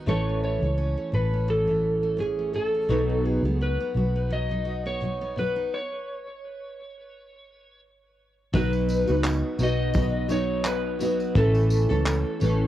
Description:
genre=acoustic pop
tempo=85 BPM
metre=4/4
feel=swing 55% on 16ths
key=B mixolydian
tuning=A4 = 439 Hz
part: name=picked steel-string acoustic guitar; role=arpeggios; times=0.0-12.7 s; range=E3 to A4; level=-34 LUFS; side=right 2 dB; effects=cassette tape
part: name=vintage muted fingered electric bass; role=bass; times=0.0-12.7 s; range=A1 to C#2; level=-26 LUFS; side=equal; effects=none
part: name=electric slide guitar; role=melody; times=0.1-12.7 s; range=G#4 to D#5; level=-28 LUFS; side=equal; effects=cassette tape, tape echo
part: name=nylon-string guitar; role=accompaniment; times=0.1-12.7 s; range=A2 to A4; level=-28 LUFS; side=equal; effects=double-tracked left and right, cassette tape
part: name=cloth-damped thuddy drum kit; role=drums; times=8.5-12.6 s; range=handclaps, kick drum, tambourine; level=-29 LUFS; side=equal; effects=none
part: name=tambourine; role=percussion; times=8.5-12.6 s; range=none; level=-47 LUFS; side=left 6 dB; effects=none
room=little or no reverb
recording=home recording on cassette, faint mains hum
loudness=-22 LUFS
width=side -13 dB against mid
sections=0.0-8.5 A section; 8.5-12.7 B section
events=stop 5.7-8.5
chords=0.1 A; 2.9 B; 5.7 N.C.; 8.5 B; 11.4 A

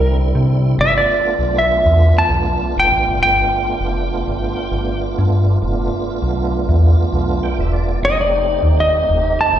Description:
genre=straight-eighth soul blues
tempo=100 BPM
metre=4/4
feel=swing 55% on 16ths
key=unclear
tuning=A4 = 439 Hz
part: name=clean lap steel guitar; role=melody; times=0.0-9.6 s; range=Bb4 to A5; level=-16 LUFS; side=equal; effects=slapback echo
part: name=tonewheel organ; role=accompaniment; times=0.0-9.6 s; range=D3 to G5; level=-22 LUFS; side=right 4 dB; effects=slow rotary speaker, overdrive, chorus vibrato, slapback echo
part: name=metallic FM bass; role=bass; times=0.0-9.6 s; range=E1 to C3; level=-16 LUFS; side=equal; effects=none
room=light reverb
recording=live gig heard through the venue's PA, recital hall reverb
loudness=-14 LUFS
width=side -10 dB against mid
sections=0.0-9.6 A section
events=tonewheel organ fill 7.1-8.0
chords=0.0 C; 0.8 G7; 8.0 F7

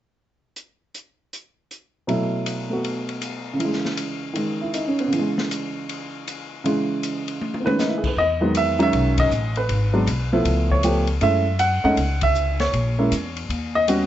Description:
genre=jazz piano trio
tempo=158 BPM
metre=4/4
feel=swing 65% on 8ths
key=E major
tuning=A4 = 445 Hz
part: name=open jazz drum kit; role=drums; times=0.6-14.0 s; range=crash cymbal, hi-hat, kick drum, ride cymbal, snare drum, toms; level=-29 LUFS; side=left 3 dB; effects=none
part: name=warm baby grand piano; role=melody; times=2.1-14.1 s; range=B2 to F#5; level=-21 LUFS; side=right 1 dB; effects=none
part: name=upright bass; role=bass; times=8.2-14.1 s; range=G#1 to F#2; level=-23 LUFS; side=left 1 dB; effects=none
room=little or no reverb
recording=nothing above 7.8 kHz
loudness=-19 LUFS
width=side -12 dB against mid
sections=0.6-2.1 A section; 2.1-8.2 B section; 8.2-14.1 C section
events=drum fill 7.4-7.8; band accent 9.1, 12.2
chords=0.6 N.C.; 2.1 B7sus4; 3.6 E6; 8.2 Emaj9; 9.7 G#m; 10.5 C#7alt; 11.2 F#m7; 12.7 A#dim; 13.5 D#7alt

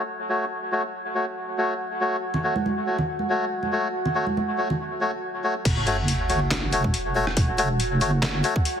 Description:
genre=deep dubstep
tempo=140 BPM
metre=4/4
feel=swing 55% on 16ths, half-time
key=F# minor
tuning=A4 = 440 Hz
part: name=deep dark ambient pad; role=sustained chords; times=0.6-8.8 s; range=F#4 to F#5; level=-31 LUFS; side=right 2 dB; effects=chorus, built-in reverb
part: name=melodica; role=stabs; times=0.0-8.5 s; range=A3 to C#5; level=-25 LUFS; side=left 1 dB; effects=low-pass filter, dub echo
part: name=congas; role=percussion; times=2.3-4.8 s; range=none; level=-28 LUFS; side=right 2 dB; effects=dub echo
part: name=deep soft wobble bass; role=bass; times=5.7-8.4 s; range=E1 to F#1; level=-25 LUFS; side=right 1 dB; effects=chorus
part: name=electronic kick drum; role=drums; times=5.7-8.6 s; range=none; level=-23 LUFS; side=equal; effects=none
part: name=trip hop sampler-style drum kit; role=drums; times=5.7-8.7 s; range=crash cymbal, handclaps, hi-hat, rim click, snare drum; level=-27 LUFS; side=left 1 dB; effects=low-pass filter on hats, low-pass filter on snare, low-pass filter on cymbals, low-pass filter on room
part: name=sub drop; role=sound effects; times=5.7-7.4 s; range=none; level=-32 LUFS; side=right 1 dB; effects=none
room=moderate echo chamber reverb, RT60 1.5 s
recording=heavily compressed radio sound, multiband compression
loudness=-22 LUFS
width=side -8 dB against mid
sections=0.0-5.7 A section; 5.7-8.8 B section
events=drop 5.7-8.8; impact 5.7-7.4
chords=0.0 F#m

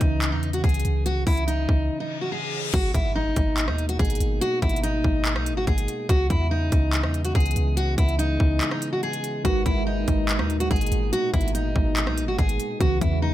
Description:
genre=hip hop, trap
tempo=143 BPM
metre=4/4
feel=half-time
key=G# minor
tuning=A4 = 440 Hz
part: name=picked steel-string acoustic guitar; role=melody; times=0.0-13.3 s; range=D#4 to G#4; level=-26 LUFS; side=equal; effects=low-pass filter, ping-pong delay
part: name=mellow tine electric piano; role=accompaniment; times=0.0-2.8, 9.4-13.3 s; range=C#3 to B4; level=-31 LUFS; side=right 1 dB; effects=medium stereo tremolo, low-pass filter
part: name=clean 808-style bass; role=bass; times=0.0-13.3 s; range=G#1 to E2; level=-24 LUFS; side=equal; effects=none
part: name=trap drum kit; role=drums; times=0.0-13.1 s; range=crash cymbal, handclaps, hi-hat, kick drum, rim click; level=-24 LUFS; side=equal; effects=none
part: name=reverse cymbal and impact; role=sound effects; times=2.1-4.4 s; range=none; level=-34 LUFS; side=left 2 dB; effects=none
part: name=dark brass ensemble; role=sustained chords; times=2.7-13.3 s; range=A#2 to D#4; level=-33 LUFS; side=left 2 dB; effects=none
room=little or no reverb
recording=none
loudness=-21 LUFS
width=side -13 dB against mid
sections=0.0-2.7 A section; 2.7-13.3 B section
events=break 1.9-2.7, 8.6-9.4; reverse cymbal 2.1-2.7; impact 2.7-4.4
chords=0.0 C#m7; 2.7 G#madd9; 6.1 C#m7; 9.4 G#madd9; 12.8 C#m7

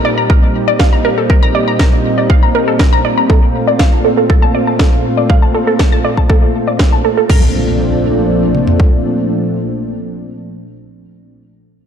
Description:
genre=progressive house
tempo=120 BPM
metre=4/4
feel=straight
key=Bb major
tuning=A4 = 440 Hz
part: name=lush unison pad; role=sustained chords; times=0.0-11.3 s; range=Bb2 to F4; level=-16 LUFS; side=equal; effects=chorus, sidechain pumping
part: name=glassy wavetable pluck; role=arpeggios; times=0.0-7.5 s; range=A4 to Bb5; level=-16 LUFS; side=right 1 dB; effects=chorus, sidechain pumping, ping-pong delay
part: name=house drum kit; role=drums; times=0.3-8.9 s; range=kick drum, toms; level=-10 LUFS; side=equal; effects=overdrive
part: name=house drum kit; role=drums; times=0.8-7.4 s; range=crash cymbal, snare drum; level=-23 LUFS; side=equal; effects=overdrive
part: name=impact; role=sound effects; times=7.3-11.4 s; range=none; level=-21 LUFS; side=equal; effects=none
room=light reverb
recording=dark, warm production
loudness=-10 LUFS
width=side -8 dB against mid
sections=0.0-7.3 A section; 7.3-11.3 B section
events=filter sweep on synth arpeggio sound 0.0-7.3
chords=0.0 Cm/Bb; 3.3 Bbmaj7

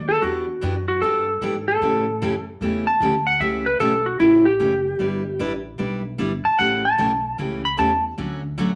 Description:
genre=country, western swing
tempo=151 BPM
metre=4/4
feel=swing 66% on 8ths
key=unclear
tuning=A4 = 440 Hz
part: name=clean lap steel guitar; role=second line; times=0.0-8.0 s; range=E4 to B5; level=-21 LUFS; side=equal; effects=none
part: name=upright bass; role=bass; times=0.0-8.8 s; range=F#1 to A2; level=-33 LUFS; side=equal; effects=none
part: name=picked steel-string acoustic guitar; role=accompaniment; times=0.2-8.7 s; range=C#3 to B4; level=-28 LUFS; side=equal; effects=none
room=wet studio reverb, RT60 0.8 s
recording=lossy compression artefacts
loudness=-21 LUFS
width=mono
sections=0.0-8.8 A section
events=electric slide guitar solo 0.0-8.8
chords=0.2 Em7; 1.8 A7; 5.0 Em7/G; 6.6 A7; 8.2 Dmaj7

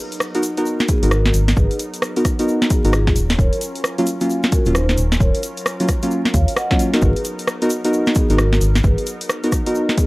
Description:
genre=UK garage, two-step garage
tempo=132 BPM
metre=4/4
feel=swing 63% on 16ths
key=G# dorian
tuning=A4 = 435 Hz
part: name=warm analog pad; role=sustained chords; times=0.0-10.1 s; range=F#3 to A#4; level=-32 LUFS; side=equal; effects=wide subtle chorus, sidechain pumping
part: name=punchy analog drum machine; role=drums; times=0.1-10.1 s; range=hi-hat, rim click, snare drum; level=-21 LUFS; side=equal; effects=overdrive
part: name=egg shaker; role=percussion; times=0.1-10.1 s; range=none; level=-33 LUFS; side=left 2 dB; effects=none
part: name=deep mellow chord stab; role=stabs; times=0.3-10.1 s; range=F#3 to A#4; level=-19 LUFS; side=equal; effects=chorus
part: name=vibraphone with soft mallets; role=melody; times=0.9-10.1 s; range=B3 to F#5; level=-26 LUFS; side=equal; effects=tape echo
part: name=electronic kick drum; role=drums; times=0.9-10.1 s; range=none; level=-18 LUFS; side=equal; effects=overdrive
part: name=organ-like FM bass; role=bass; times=1.0-9.0 s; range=D#1 to D#2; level=-16 LUFS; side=equal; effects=none
room=little or no reverb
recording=dry, gritty hardware recording, vinyl crackle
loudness=-15 LUFS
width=side -22 dB against mid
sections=0.0-10.1 A section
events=none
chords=0.0 G#m7; 3.2 D#m7; 7.0 G#m7

